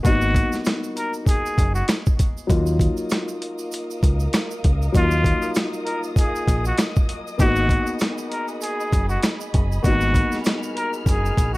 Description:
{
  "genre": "hip hop, boom-bap hip-hop",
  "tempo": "98 BPM",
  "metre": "4/4",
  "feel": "swing 59% on 16ths",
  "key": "unclear",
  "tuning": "A4 = 440 Hz",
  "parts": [
    { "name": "trumpet with straight mute", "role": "melody", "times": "0.0-11.6 s", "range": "F4 to Bb4", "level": "-26 LUFS", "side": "equal", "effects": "high-pass filter, low-pass filter, tape echo" },
    { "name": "dark upright piano", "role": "accompaniment", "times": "0.0-11.6 s", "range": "Gb3 to Gb4", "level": "-27 LUFS", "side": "left 2 dB", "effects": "high-pass filter, low-pass filter" },
    { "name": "boom bap sampler-style drum kit", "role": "drums", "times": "0.0-11.5 s", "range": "hi-hat, kick drum, rim click, snare drum", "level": "-20 LUFS", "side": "equal", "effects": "none" },
    { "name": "tube shaker", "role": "percussion", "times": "0.0-11.6 s", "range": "none", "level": "-41 LUFS", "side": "right 7 dB", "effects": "none" },
    { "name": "deep dub fingered electric bass", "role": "bass", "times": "0.1-11.6 s", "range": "Gb1 to Eb2", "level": "-22 LUFS", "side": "equal", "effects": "none" },
    { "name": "warm studio string section", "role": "sustained chords", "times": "2.5-11.6 s", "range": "Ab4 to F6", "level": "-35 LUFS", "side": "equal", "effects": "high-pass filter, low-pass filter" }
  ],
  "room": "small room ambience",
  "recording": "vinyl crackle",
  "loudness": "-19 LUFS",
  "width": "side -20 dB against mid",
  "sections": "0.0-11.6 A section",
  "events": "none",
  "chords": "0.0 Abm7; 2.5 Ebmadd9; 7.4 Abm7"
}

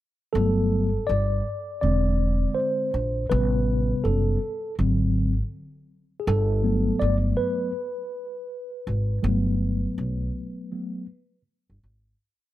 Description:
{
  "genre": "hip hop",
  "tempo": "81 BPM",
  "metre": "4/4",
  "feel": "swing 64% on 16ths",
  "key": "G major",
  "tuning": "A4 = 440 Hz",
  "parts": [
    { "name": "mellow tine electric piano", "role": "accompaniment", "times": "0.3-11.4 s", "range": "C3 to D5", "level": "-26 LUFS", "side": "equal", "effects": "medium stereo tremolo" },
    { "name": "upright bass", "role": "bass", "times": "0.3-12.1 s", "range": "E1 to B1", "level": "-24 LUFS", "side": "equal", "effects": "none" }
  ],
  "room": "light reverb",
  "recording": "none",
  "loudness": "-22 LUFS",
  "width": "side -14 dB against mid",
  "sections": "0.3-12.2 A section",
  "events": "tine electric piano solo 0.3-12.2; fade-out 9.2-12.2",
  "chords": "0.3 Gmaj9; 1.8 Eaug7; 3.3 Am7; 4.8 Ab7#11; 6.3 Gmaj9"
}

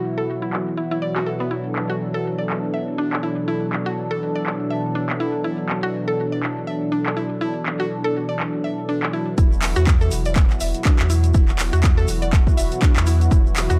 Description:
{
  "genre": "afro house",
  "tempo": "122 BPM",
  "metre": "4/4",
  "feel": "swing 57% on 16ths",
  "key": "unclear",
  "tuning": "A4 = 440 Hz",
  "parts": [
    { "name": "warm analog pad", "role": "sustained chords", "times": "0.0-13.8 s", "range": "B2 to A4", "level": "-27 LUFS", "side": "equal", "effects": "chorus, sidechain pumping" },
    { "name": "mallet-like synth pluck", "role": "arpeggios", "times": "0.2-13.8 s", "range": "B3 to E5", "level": "-30 LUFS", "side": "equal", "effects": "chorus, sidechain pumping, tape echo" },
    { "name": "house drum kit", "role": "drums", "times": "0.5-13.8 s", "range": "handclaps, hi-hat", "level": "-29 LUFS", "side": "equal", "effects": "overdrive, low-pass filter on snare, small room reverb, low-pass filter on hats" },
    { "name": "warm sub bass", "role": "bass", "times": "9.4-13.8 s", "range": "E1 to E2", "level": "-22 LUFS", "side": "equal", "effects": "sidechain pumping" },
    { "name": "electronic kick drum", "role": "drums", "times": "9.4-13.4 s", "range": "none", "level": "-18 LUFS", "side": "equal", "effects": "overdrive, small room reverb" },
    { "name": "egg shaker", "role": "percussion", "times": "9.4-13.8 s", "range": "none", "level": "-39 LUFS", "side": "equal", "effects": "none" }
  ],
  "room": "digital ambience",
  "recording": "dry, gritty hardware recording",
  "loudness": "-21 LUFS",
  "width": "mono",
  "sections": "0.0-9.4 A section; 9.4-13.8 B section",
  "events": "drop 9.4-13.8",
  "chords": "0.0 Esus2"
}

